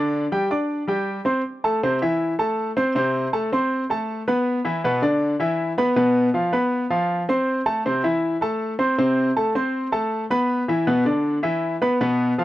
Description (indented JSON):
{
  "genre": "latin",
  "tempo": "159 BPM",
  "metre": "4/4",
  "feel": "straight",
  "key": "A minor",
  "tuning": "A4 = 440 Hz",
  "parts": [
    { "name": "clear baby grand piano", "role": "solo", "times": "0.0-12.4 s", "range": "B2 to D6", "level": "-19 LUFS", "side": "equal", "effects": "none" }
  ],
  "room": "small room ambience",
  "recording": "dry, close 1970s-style studio recording",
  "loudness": "-19 LUFS",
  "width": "side -15 dB against mid",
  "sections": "0.0-1.4 A section; 1.4-12.4 A section",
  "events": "none",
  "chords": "0.0 G5; 1.4 Am; 3.0 Amadd9/C; 4.5 E5; 6.0 F5; 7.5 Am; 9.0 Amadd9/C; 10.5 E5"
}